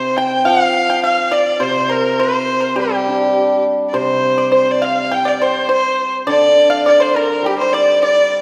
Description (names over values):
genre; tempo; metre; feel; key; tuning
chinese traditional, Chinese chamber ensemble; 103 BPM; 2/4; rubato; G yu mode; A4 = 440 Hz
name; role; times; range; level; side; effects
rich erhu; melody; 0.0-8.4 s; G4 to G5; -17 LUFS; equal; none
pipa; second line; 0.0-8.4 s; G4 to G5; -22 LUFS; equal; none
hammered dulcimer; accompaniment; 0.0-8.4 s; C3 to D4; -21 LUFS; equal; none
room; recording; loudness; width
wet scoring stage reverb, RT60 1.6 s; heard from further back in the room; -15 LUFS; mono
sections
0.0-4.0 A section; 4.0-8.4 B section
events
none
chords
none